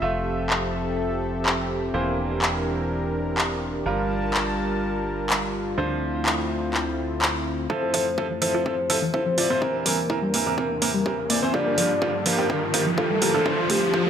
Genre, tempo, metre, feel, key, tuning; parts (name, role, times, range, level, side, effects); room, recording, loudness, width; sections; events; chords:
progressive house; 125 BPM; 4/4; straight; G dorian; A4 = 442 Hz
warm analog pad; sustained chords; 0.0-14.1 s; D2 to A5; -29 LUFS; equal; chorus, sidechain pumping
bright baby grand piano; stabs; 0.0-14.0 s; G2 to E5; -28 LUFS; right 4 dB; sidechain pumping, low-pass filter, digital delay
fat analog bass; bass; 0.0-7.7 s; E1 to D2; -32 LUFS; equal; sidechain pumping
pop drum kit; drums; 0.5-13.8 s; handclaps, hi-hat; -26 LUFS; equal; low-pass filter on snare, studio reverb, low-pass filter on hats
soft octave-layered synth lead; melody; 7.7-14.1 s; G4 to D5; -26 LUFS; left 2 dB; chorus, tremolo, sidechain pumping, digital delay
analog pluck; arpeggios; 7.7-14.1 s; E3 to Bb4; -29 LUFS; equal; chorus, sidechain pumping, digital delay
electronic kick drum; drums; 7.7-14.0 s; -30 LUFS; left 1 dB; high-pass filter on kick, studio reverb
riser; sound effects; 9.5-14.1 s; -30 LUFS; left 1 dB
moderate lush hall reverb, RT60 2.1 s; -21 LUFS; side -8 dB against mid
0.0-7.7 A section; 7.7-14.1 B section
build-up 7.7-14.1; filter sweep on synth pluck 7.7-14.1; filter sweep on analog synth pad 7.7-14.1; riser 9.5-14.1
0.0 Fmaj7; 1.9 C7/E; 3.9 Gm7; 5.8 Dm7; 7.7 Fmaj7; 9.6 C7/E; 11.5 Gm7; 13.5 Dm7